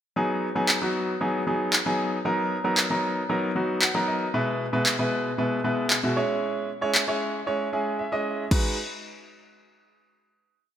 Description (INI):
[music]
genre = dance-pop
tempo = 115 BPM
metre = 4/4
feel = straight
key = G# minor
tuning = A4 = 444 Hz
[part]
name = clear baby grand piano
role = accompaniment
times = 0.2-8.8 s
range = B2 to F#5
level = -24 LUFS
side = equal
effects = sidechain pumping
[part]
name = deep house drum kit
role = drums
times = 0.7-8.6 s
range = crash cymbal, handclaps, kick drum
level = -24 LUFS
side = equal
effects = none
[sound]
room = moderate lush hall reverb, RT60 2.0 s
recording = bright 1980s-style digital production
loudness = -23 LUFS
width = side -10 dB against mid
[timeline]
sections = 0.2-8.5 verse; 8.5-10.6 final chord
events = grand piano fill 3.6-4.3, 7.7-8.5; silent gap 8.0-8.5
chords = 0.2 G#m7; 2.3 Bmaj7; 4.3 E/B; 6.2 C#m; 8.5 G#m7